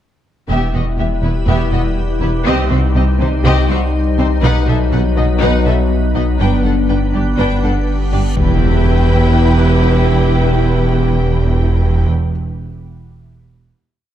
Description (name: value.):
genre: cinematic, hybrid orchestral and electronic film score.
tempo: 122 BPM.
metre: 4/4.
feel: straight.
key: E harmonic minor.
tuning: A4 = 437 Hz.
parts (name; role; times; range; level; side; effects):
rich symphonic violin section; melody; 0.5-12.1 s; B4 to G5; -26 LUFS; left 3 dB; none.
warm symphonic violin section; second line; 0.5-12.1 s; Eb4 to B4; -24 LUFS; left 4 dB; none.
rich symphonic viola section; accompaniment; 0.5-12.1 s; B3 to E4; -24 LUFS; right 1 dB; none.
mellow French horn section; sustained chords; 0.5-12.1 s; F#3 to G4; -22 LUFS; left 3 dB; none.
soft additive organ-like pad; sustained chords; 0.9-12.1 s; F#3 to C5; -22 LUFS; left 1 dB; ensemble chorus, built-in reverb, phaser.
rich symphonic cello section; bass; 0.5-12.1 s; E2 to C3; -18 LUFS; right 2 dB; none.
rich symphonic double bass section; bass; 0.5-12.1 s; E1 to C2; -20 LUFS; right 3 dB; none.
saturated sub bass; bass; 0.5-12.0 s; E1 to C2; -18 LUFS; equal; none.
felt-muted upright piano; texture; 1.5-8.4 s; D#5 to B5; -32 LUFS; equal; none.
reverse cymbal and impact; sound effects; 8.2-10.3 s; none; -21 LUFS; left 1 dB; none.
room: moderate scoring stage reverb, RT60 1.6 s.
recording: dark, warm production.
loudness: -12 LUFS.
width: side -11 dB against mid.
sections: 0.5-8.4 theme; 8.4-12.3 final chord.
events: reverse cymbal 8.2; impact 8.4-10.3.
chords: 0.5 Em; 2.5 Cm; 4.4 B; 6.4 G; 8.4 Em.